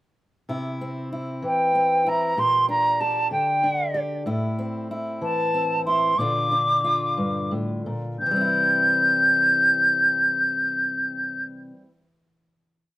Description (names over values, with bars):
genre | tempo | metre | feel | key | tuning
acoustic folk duo or small band | 57-64 BPM (dotted quarters) | 6/8 | straight | C mixolydian | A4 = 441 Hz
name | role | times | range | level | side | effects
fingerpicked steel-string acoustic guitar | accompaniment | 0.5-11.9 s | G2 to G4 | -27 LUFS | left 1 dB | none
wooden flute | melody | 1.4-11.4 s | G5 to G6 | -19 LUFS | equal | slapback echo
room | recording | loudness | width
little or no reverb | recorded outdoors, with no room sound | -20 LUFS | side -16 dB against mid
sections
0.5-8.2 verse; 8.2-12.4 final chord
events
slowing down 4.3-8.2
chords
0.5 C; 2.4 Gm/Bb; 4.3 Am; 6.2 Bb; 8.2 C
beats
| 0.49 1.43 | 2.37 3.31 | 4.26 5.21 | 6.17 7.17 | 8.20 9.26 | 10.31 11.37